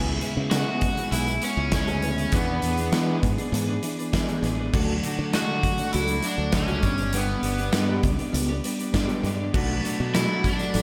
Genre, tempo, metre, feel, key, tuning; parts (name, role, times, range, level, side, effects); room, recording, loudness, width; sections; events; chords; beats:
indie rock; 100 BPM; 4/4; straight; A4 = 440 Hz
electric guitar through a small old amp; riff; 0.0-10.8 s; E3 to G#4; -35 LUFS; equal; ensemble chorus, tape echo
twelve-string electric guitar; riff; 0.0-10.8 s; B2 to G#4; -31 LUFS; equal
modern bright fingered electric bass; bass; 0.0-10.8 s; G1 to E3; -30 LUFS; equal
big rock drum kit; drums; 0.2-10.8 s; crash cymbal, hi-hat, kick drum, snare drum; -30 LUFS; equal
cranked stack guitar; melody; 0.5-10.8 s; B3 to F#4; -32 LUFS; equal; overdrive, slapback echo, tape echo
combo organ; sustained chords; 9.6-10.8 s; A4 to B5; -40 LUFS; equal
light reverb, small room ambience; -25 LUFS; mono
0.0-10.8 A section
0.0 C#m7; 2.3 E7; 4.7 D; 6.8 G; 9.5 Bm7
0.52 1.13 1.73 | 2.33 2.93 3.53 4.13 | 4.73 5.33 5.93 6.54 | 7.14 7.74 8.34 8.94 | 9.54 10.14 10.74